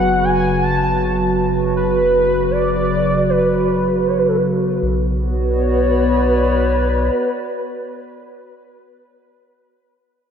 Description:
ambient; free time; B minor; A4 = 439 Hz
warm velvety synth lead; melody; 0.0-8.7 s; A4 to A5; -19 LUFS; right 1 dB; chorus, ping-pong delay
warbly tape-like pad; sustained chords; 0.0-8.7 s; C#3 to D5; -18 LUFS; equal; chorus, built-in reverb
round analog bass; bass; 0.0-7.1 s; F#1 to B1; -23 LUFS; equal
analog drone; drone; 0.0-8.8 s; B3 to B4; -29 LUFS; equal; chorus
wet lush hall reverb, RT60 2.6 s; -15 LUFS; side -7 dB against mid
0.0-4.8 A section; 4.8-7.9 B section
0.0 F#5; 4.8 Bm

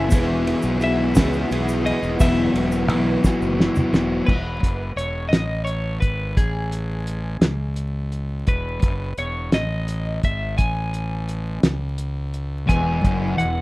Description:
indie rock; 57 BPM (dotted quarters); 6/8; straight; E major; A4 = 440 Hz
twelve-string electric guitar; melody; 0.0-13.6 s; G#4 to G#5; -28 LUFS; left 1 dB; slapback echo, plate reverb
string machine, full ensemble; sustained chords; 0.0-4.3 s; E3 to F#4; -30 LUFS; right 1 dB
raw garage guitar; riff; 0.0-4.8, 12.7-13.5 s; E3 to A4; -30 LUFS; right 4 dB; overdrive, ensemble chorus, slapback echo
thick fuzz guitar; riff; 0.0-4.3, 12.7-13.6 s; E2 to G#4; -22 LUFS; left 2 dB; distortion
fuzz fingered electric bass; bass; 0.0-13.6 s; E1 to C#2; -25 LUFS; equal; overdrive
cloth-damped thuddy drum kit; drums; 0.1-13.6 s; crash cymbal, hi-hat, kick drum, ride cymbal, snare drum, toms; -20 LUFS; equal
tube shaker; percussion; 0.1-4.0 s; -40 LUFS; right 2 dB
moderate small room ambience, RT60 0.5 s; rough home demo mix, vinyl crackle; -19 LUFS; side -19 dB against mid
0.0-4.3 A section; 4.3-13.6 B section
drum fill 3.2-4.3
0.1 Eadd9; 2.2 Esus2; 4.3 E

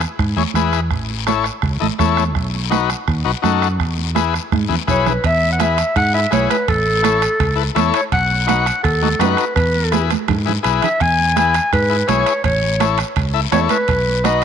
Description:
latin, cumbia; 166 BPM; 4/4; straight; E major; A4 = 440 Hz
overdriven combo organ; accompaniment; 0.0-14.4 s; D#4 to E5; -21 LUFS; left 11 dB
fingered electric bass; bass; 0.0-14.4 s; A1 to G#2; -20 LUFS; equal
bombo; percussion; 0.0-14.4 s; -23 LUFS; right 5 dB
guiro; percussion; 0.0-14.4 s; -29 LUFS; left 16 dB
congas; percussion; 0.4-14.4 s; -24 LUFS; right 14 dB
mellow clarinet; melody; 4.9-14.4 s; A4 to G#5; -18 LUFS; equal
timbales; percussion; 5.2-14.4 s; -28 LUFS; right 15 dB
light reverb, studio reverb; 1960s-style stereo with parts hard left and right; -14 LUFS; side -8 dB against mid
0.0-5.2 A section; 5.2-14.4 B section
drum fill 4.5-5.2, 9.9-11.0
0.0 E; 0.9 A; 2.4 B7; 3.8 E; 6.7 A; 8.1 B7; 9.6 E; 12.4 A; 13.9 B

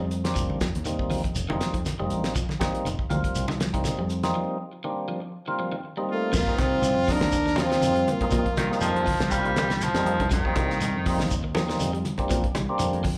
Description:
afrobeat; 121 BPM; 4/4; swing 54% on 16ths; A4 = 442 Hz
percussive tonewheel organ; accompaniment; 0.0-13.0 s; G3 to F4; -33 LUFS; equal; slow rotary speaker, plate reverb, slapback echo
electric guitar at the edge of break-up; arpeggios; 0.0-13.2 s; Eb3 to G3; -37 LUFS; equal; slapback echo, tape echo
fingered electric bass; bass; 0.0-13.0 s; F1 to Bb2; -32 LUFS; equal
damped 70s drum kit; drums; 0.1-13.2 s; crash cymbal, hi-hat, kick drum, snare drum; -31 LUFS; equal
shekere; percussion; 0.1-13.2 s; -39 LUFS; equal
congas; percussion; 0.5-13.2 s; -34 LUFS; equal
dark trombone; melody; 6.1-9.1 s; A3 to D4; -28 LUFS; equal; plate reverb
brilliant trumpet; second line; 6.1-9.1 s; F4 to Bb4; -33 LUFS; equal; plate reverb, slapback echo
raspy baritone saxophone; second line; 8.6-11.3 s; Eb3 to G3; -29 LUFS; equal; plate reverb
light reverb; live gig heard through the venue's PA, club reverb; -26 LUFS; mono
0.0-6.3 A section; 6.3-13.2 B section
break 4.3-6.3
0.0 F7sus4

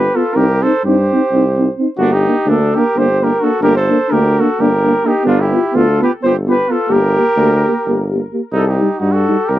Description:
balkan folk; 258 BPM (eighths); 7/8; straight; A4 = 441 Hz
mellow flugelhorn; melody; 0.0-9.6 s; F4 to C5; -16 LUFS; equal; tape echo
clear trumpet; second line; 0.0-9.6 s; D4 to A4; -22 LUFS; right 5 dB
dark euphonium; accompaniment; 0.0-9.4 s; D4 to G4; -18 LUFS; left 5 dB
dark euphonium; accompaniment; 0.0-9.4 s; G3 to C4; -18 LUFS; right 4 dB
clear tuba; bass; 0.0-9.6 s; G1 to G2; -16 LUFS; equal
little or no reverb; dry, close 1970s-style studio recording; -12 LUFS; side -14 dB against mid
0.0-8.5 A section; 8.5-9.6 B section
0.4 Cm; 2.0 Gm; 5.2 G7; 6.9 Gm; 8.5 Cm

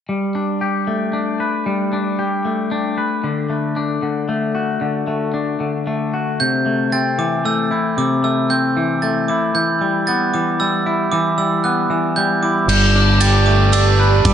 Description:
post-rock; 114 BPM; 3/4; straight; G major; A4 = 442 Hz
twangy electric guitar; arpeggios; 0.1-14.3 s; C3 to B4; -18 LUFS; left 2 dB; spring reverb, tape echo
glockenspiel with brass mallets; arpeggios; 6.4-14.3 s; D6 to A6; -20 LUFS; right 4 dB; tape echo
icy glass pad; sustained chords; 13.1-14.3 s; G4 to A5; -21 LUFS; right 6 dB; chorus, built-in reverb
growling fingered electric bass; bass; 12.7-14.3 s; G1; -14 LUFS; right 1 dB; overdrive
big rock drum kit; drums; 12.7-14.3 s; crash cymbal, kick drum, ride cymbal; -18 LUFS; equal
moderate plate reverb, RT60 1.6 s, studio reverb; nothing above 10.3 kHz; -15 LUFS; side -9 dB against mid
0.1-12.7 A section; 12.7-14.3 A section
0.1 Gadd9; 3.2 D; 6.4 Am/C; 9.5 Em; 12.7 Gadd9

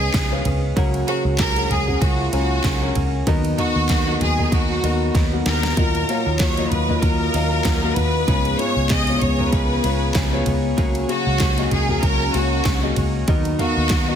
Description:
piano-driven pop; 96 BPM; 4/4; swing 56% on 16ths; A4 = 435 Hz
bright studio violin section; melody; 0.0-14.2 s; Gb4 to Eb5; -24 LUFS; equal
mellow French horn section; second line; 0.0-14.2 s; Db3 to Ab4; -31 LUFS; right 6 dB
clear concert grand piano; accompaniment; 0.0-14.2 s; Ab2 to Ab5; -24 LUFS; left 5 dB
direct-recorded clean electric guitar; riff; 0.0-14.2 s; Db3 to A#4; -30 LUFS; right 5 dB; wide subtle chorus
vintage muted picked electric bass; bass; 0.0-14.2 s; Db2 to D#2; -22 LUFS; equal
pop drum kit; drums; 0.1-14.1 s; handclaps, kick drum, ride cymbal, snare drum, toms; -23 LUFS; right 1 dB
chorused pulse-width pad; sustained chords; 6.4-14.2 s; Cb4 to Eb6; -34 LUFS; left 4 dB
light reverb, digital ambience; dense, heavily limited modern master; -17 LUFS; side -8 dB against mid
0.0-14.2 A section
drum fill 5.1-5.8
0.0 Db7; 0.8 Gbadd9/Db; 3.3 Bmaj7/D#; 5.8 Ebmadd9; 8.3 Db7; 10.8 Gbadd9/Db; 13.3 Bmaj7/D#

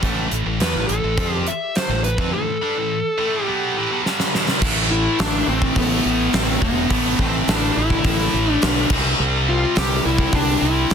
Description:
hard rock; 105 BPM; 4/4; straight; A minor; A4 = 440 Hz
heavy high-gain guitar; riff; 0.0-10.9 s; G2 to F4; -22 LUFS; right 1 dB; distortion
growling fingered electric bass; bass; 0.0-10.9 s; E1 to F2; -23 LUFS; equal; overdrive
gated 80s drum kit; drums; 0.0-10.9 s; crash cymbal, hi-hat, kick drum, snare drum; -21 LUFS; equal; soft clipping on snare
dark smooth lead guitar; melody; 0.6-10.9 s; B3 to E5; -22 LUFS; left 1 dB; overdrive, tape echo
little or no reverb; dense, heavily limited modern master; -17 LUFS; side -7 dB against mid
0.0-4.6 A section; 4.6-10.9 B section
drum fill 4.0-4.6
0.0 A5; 8.9 C

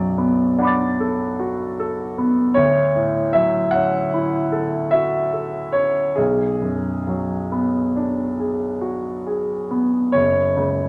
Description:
classical, impressionist solo piano; 44-52 BPM (dotted quarters); 9/8; rubato; A4 = 440 Hz
clear concert grand piano; solo; 0.0-10.9 s; F#1 to A6; -20 LUFS; equal
wet stone room reverb, RT60 1.4 s; -20 LUFS; mono
0.0-10.9 A section
0.0 Bm7; 2.6 Dmaj9; 6.2 Bm6; 10.2 F#5

